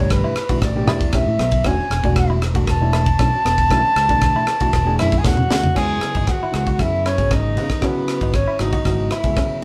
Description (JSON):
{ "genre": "electric jazz fusion", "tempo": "117 BPM", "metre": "4/4", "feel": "straight", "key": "unclear", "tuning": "A4 = 440 Hz", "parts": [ { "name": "concert flute", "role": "melody", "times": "0.0-9.6 s", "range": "B4 to A5", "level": "-24 LUFS", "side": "equal", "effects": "none" }, { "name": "overdriven reed electric piano", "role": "accompaniment", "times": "0.0-9.6 s", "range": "B2 to A4", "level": "-27 LUFS", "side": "equal", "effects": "none" }, { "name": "semi-hollow electric guitar", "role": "stabs", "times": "0.0-9.6 s", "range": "B3 to F#4", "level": "-32 LUFS", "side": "equal", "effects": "none" }, { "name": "fingered electric bass", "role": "bass", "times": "0.0-9.5 s", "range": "E1 to C#3", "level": "-24 LUFS", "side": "equal", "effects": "none" }, { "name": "tight funk drum kit", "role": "drums", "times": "0.1-9.5 s", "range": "crash cymbal, kick drum, ride cymbal, rim click, snare drum, toms", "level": "-24 LUFS", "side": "equal", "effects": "none" }, { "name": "clear tenor saxophone", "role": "second line", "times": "5.0-9.6 s", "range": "B3 to G#4", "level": "-30 LUFS", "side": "equal", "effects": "none" } ], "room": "wet studio reverb, RT60 0.5 s", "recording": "band playing live in one room", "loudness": "-18 LUFS", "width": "mono", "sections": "0.0-5.8 A section; 5.8-9.6 B section", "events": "drum fill 5.2-5.8", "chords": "0.0 A9sus4; 1.7 E9sus4; 5.8 C#m11" }